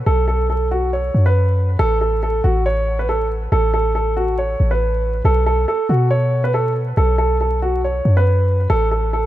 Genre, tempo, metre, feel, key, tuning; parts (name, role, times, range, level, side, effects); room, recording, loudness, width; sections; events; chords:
hip hop, trap; 139 BPM; 4/4; half-time; A4 = 440 Hz
clean 808-style bass; bass; 0.0-9.3 s; A1 to B2; -17 LUFS; equal
dark grand piano; melody; 0.1-9.3 s; F#4 to C#5; -19 LUFS; right 1 dB; digital delay
light reverb, small room ambience; vinyl crackle; -15 LUFS; side -14 dB against mid
0.0-9.3 A section
0.0 B5; 1.8 N.C.; 5.2 B5; 8.7 N.C.